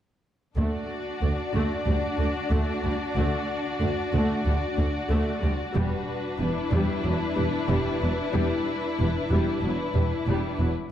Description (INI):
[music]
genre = cinematic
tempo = 93 BPM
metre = 4/4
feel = straight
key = unclear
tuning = A4 = 439 Hz
[part]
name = warm symphonic violin section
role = second line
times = 0.6-10.7 s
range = E4 to D5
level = -30 LUFS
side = left 4 dB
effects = none
[part]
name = warm symphonic viola section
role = accompaniment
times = 0.6-10.7 s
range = F#3 to D4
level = -30 LUFS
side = equal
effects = none
[part]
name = dark studio double bass section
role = bass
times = 0.6-10.7 s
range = E1 to D2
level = -29 LUFS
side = right 2 dB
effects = none
[part]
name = rich symphonic cello section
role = bass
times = 0.6-10.7 s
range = D2 to E2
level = -29 LUFS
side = right 1 dB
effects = none
[sound]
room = moderate recital hall reverb, RT60 1.7 s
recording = dark, warm production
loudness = -24 LUFS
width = side -11 dB against mid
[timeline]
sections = 0.6-10.9 A section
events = none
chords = 0.6 D; 5.8 Em7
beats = | 0.57 1.22 1.87 2.51 | 3.16 3.81 4.46 5.10 | 5.75 6.40 7.04 7.69 | 8.34 8.98 9.63 10.28